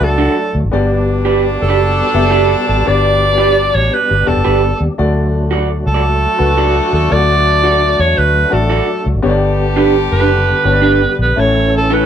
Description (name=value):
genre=soul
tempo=113 BPM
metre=4/4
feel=swing 65% on 8ths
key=unclear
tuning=A4 = 440 Hz
part: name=breathy alto saxophone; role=melody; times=0.0-12.1 s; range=A4 to D5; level=-14 LUFS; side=right 1 dB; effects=none
part: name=warm horn section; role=second line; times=0.0-12.1 s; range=A2 to A4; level=-20 LUFS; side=equal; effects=none
part: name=warm upright piano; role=accompaniment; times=0.0-12.1 s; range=G2 to E5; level=-20 LUFS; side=left 4 dB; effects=none
part: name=percussive tonewheel organ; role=sustained chords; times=0.0-12.1 s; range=D3 to A4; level=-22 LUFS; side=left 2 dB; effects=slow rotary speaker, overdrive, chorus vibrato
part: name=vintage muted fingered electric bass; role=bass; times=0.0-12.1 s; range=E1 to E2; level=-16 LUFS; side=equal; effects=none
part: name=electric guitar through a small old amp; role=stabs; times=0.2-12.1 s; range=D4 to D5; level=-15 LUFS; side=right 5 dB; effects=warbly pitch drift
room=moderate club reverb, RT60 0.5 s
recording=none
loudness=-11 LUFS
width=side -9 dB against mid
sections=0.0-12.1 A section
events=none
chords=0.0 D; 0.7 G; 5.0 D; 9.2 G; 11.4 A